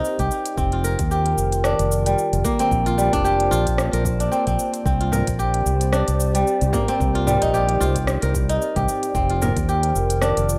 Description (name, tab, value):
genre	organic downtempo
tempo	112 BPM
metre	4/4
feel	swing 57% on 16ths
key	C minor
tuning	A4 = 442 Hz
part	warbly tape-like pad	sustained chords	0.0-10.6 s	Eb3 to D5	-31 LUFS	equal	chorus, built-in reverb, sidechain pumping
part	kora	arpeggios	0.0-10.6 s	G3 to Bb4	-24 LUFS	equal	digital delay
part	organic electronic drum kit	drums	0.0-10.6 s	cabasa, hi-hat, rim click	-31 LUFS	equal	overdrive
part	mellow fretless electric bass	bass	0.2-10.6 s	F1 to Eb2	-24 LUFS	equal	analog chorus
part	electronic kick drum	drums	0.2-9.7 s	none	-29 LUFS	equal	overdrive
part	frame drum	percussion	5.1-9.5 s	none	-30 LUFS	equal	none
room	wet studio reverb, RT60 0.5 s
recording	rough home demo mix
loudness	-20 LUFS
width	mono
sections	0.0-10.6 A section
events	none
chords	0.0 Cm7; 0.6 F7sus4; 2.7 Bb; 4.9 Cm7; 9.1 F7sus4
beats	0.04 | 0.57 1.11 1.65 2.18 | 2.72 3.25 3.79 4.32 | 4.86 5.39 5.93 6.47 | 7.00 7.54 8.07 8.61 | 9.14 9.68 10.22